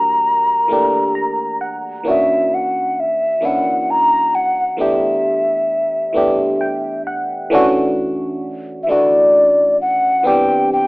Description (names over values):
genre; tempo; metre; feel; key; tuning
R&B; 44 BPM (dotted quarters); 6/8; straight; D major; A4 = 440 Hz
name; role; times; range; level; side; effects
breathy alto ocarina; melody; 0.0-10.9 s; D5 to Bb5; -15 LUFS; equal; none
FM electric piano; accompaniment; 0.0-10.9 s; Eb3 to Bb5; -18 LUFS; equal; chorus
room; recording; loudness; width
wet small room reverb, RT60 0.5 s; rough home demo mix, telephone sound; -14 LUFS; side -24 dB against mid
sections
0.0-7.5 A section; 7.5-10.9 B section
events
FM electric piano fill 0.7-2.1, 6.1-7.5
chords
0.0 Gm6; 2.1 F#7b13; 4.8 A9sus4; 7.5 Dmaj9; 10.2 Cmaj7